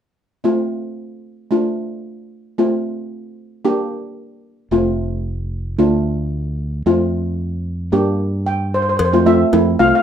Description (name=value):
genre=calypso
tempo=112 BPM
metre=4/4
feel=swing 54% on 16ths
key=F major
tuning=A4 = 440 Hz
part: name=steel pan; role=accompaniment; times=0.4-10.0 s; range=A3 to G5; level=-17 LUFS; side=equal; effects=none
part: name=fingered electric bass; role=bass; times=4.7-9.9 s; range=F1 to G2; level=-21 LUFS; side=equal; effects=none
part: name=steel pan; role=melody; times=8.7-10.0 s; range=C5 to F5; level=-17 LUFS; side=left 2 dB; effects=plate reverb
part: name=cowbell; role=percussion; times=9.0-9.7 s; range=none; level=-23 LUFS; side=left 5 dB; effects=none
room=wet studio reverb, RT60 0.6 s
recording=rough home demo mix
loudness=-16 LUFS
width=side -9 dB against mid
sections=0.4-9.0 A section; 9.0-10.0 B section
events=steel pan fill 8.2-9.0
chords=0.4 F; 1.5 Dm; 2.6 F; 3.7 Gm; 4.7 F; 5.8 Dm; 6.9 F; 7.9 Gm; 9.0 Fmaj7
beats=| 0.45 0.98 1.52 2.05 | 2.58 3.12 3.65 4.19 | 4.72 5.25 5.79 6.32 | 6.86 7.39 7.93 8.46 | 8.99 9.53